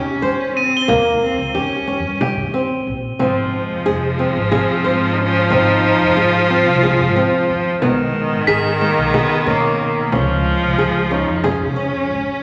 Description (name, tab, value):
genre	contemporary instrumental, chamber music in an uneven meter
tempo	182 BPM (eighths)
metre	7/8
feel	straight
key	Db major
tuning	A4 = 440 Hz
part	rich cello	melody	0.0-12.4 s	Ab3 to F4	-25 LUFS	equal	none
part	flamenco guitar	arpeggios	0.0-12.1 s	Ab3 to C5	-23 LUFS	equal	none
part	upright bass	bass	0.2-12.2 s	F1 to Eb3	-26 LUFS	equal	none
part	frame drum	percussion	0.2-12.3 s	none	-30 LUFS	equal	none
part	crotales	texture	0.6-2.3, 8.5-10.1 s	Cb7 to G7	-26 LUFS	equal	none
part	clear viola	second line	3.2-12.1 s	Eb3 to F3	-20 LUFS	equal	none
room	wet scoring stage reverb, RT60 2.0 s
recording	none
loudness	-17 LUFS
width	mono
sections	0.0-12.4 A section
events	none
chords	0.0 Eb7; 3.2 Ab; 7.8 Cb6; 10.1 Db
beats	0.23 0.56 | 0.89 1.22 1.55 1.88 2.21 2.54 2.87 | 3.20 3.53 3.86 4.19 4.52 4.85 5.18 | 5.51 5.84 6.17 6.50 6.83 7.16 7.49 | 7.82 8.15 8.48 8.81 9.14 9.47 9.80 | 10.13 10.46 10.79 11.12 11.45 11.77 12.10